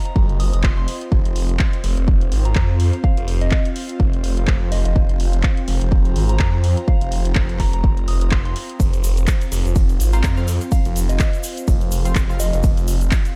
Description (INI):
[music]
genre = bass house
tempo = 125 BPM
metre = 4/4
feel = swing 56% on 16ths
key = unclear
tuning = A4 = 440 Hz
[part]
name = warbly tape-like pad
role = texture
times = 0.0-13.4 s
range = C4 to Bb5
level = -33 LUFS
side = equal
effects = chorus, built-in reverb, phaser, sidechain pumping
[part]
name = soft synth bell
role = melody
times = 0.1-12.6 s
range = Eb5 to Eb6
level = -34 LUFS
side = equal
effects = chorus, phaser, tape echo
[part]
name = house drum kit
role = drums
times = 0.1-13.3 s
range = handclaps, hi-hat, ride cymbal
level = -32 LUFS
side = equal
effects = none
[part]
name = phased detuned saw bass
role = bass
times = 0.2-13.1 s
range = F1 to F2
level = -21 LUFS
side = equal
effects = phaser, overdrive, sidechain pumping
[part]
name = electronic kick drum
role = drums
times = 0.2-13.2 s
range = none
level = -20 LUFS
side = equal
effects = none
[part]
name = egg shaker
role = percussion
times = 8.8-13.3 s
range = none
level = -35 LUFS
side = equal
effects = none
[part]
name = band-passed chord stab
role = stabs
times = 10.1-12.4 s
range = C4 to F5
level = -36 LUFS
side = equal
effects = phaser, analog chorus, sidechain pumping, tape echo
[sound]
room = digital ambience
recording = none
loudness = -18 LUFS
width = mono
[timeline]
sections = 0.0-13.4 A section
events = none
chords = 0.0 F5